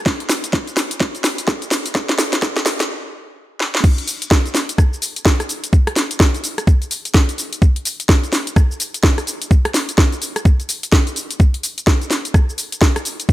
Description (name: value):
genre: house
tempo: 127 BPM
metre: 4/4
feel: swing 61% on 16ths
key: none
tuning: none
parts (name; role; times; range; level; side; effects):
- electronic kick drum; drums; 0.1-13.3 s; none; -13 LUFS; equal; overdrive
- house drum kit; drums; 0.1-13.3 s; crash cymbal, hi-hat, rim click, shaker, snare drum; -18 LUFS; equal; overdrive
room: light reverb, digital ambience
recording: high-pass filter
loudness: -15 LUFS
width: side -16 dB against mid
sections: 0.0-3.8 A section; 3.8-13.3 B section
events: build-up 0.0-3.8; drum fill 0.0-2.9, 3.6; stop 2.9-3.8; drop 3.8-13.3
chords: none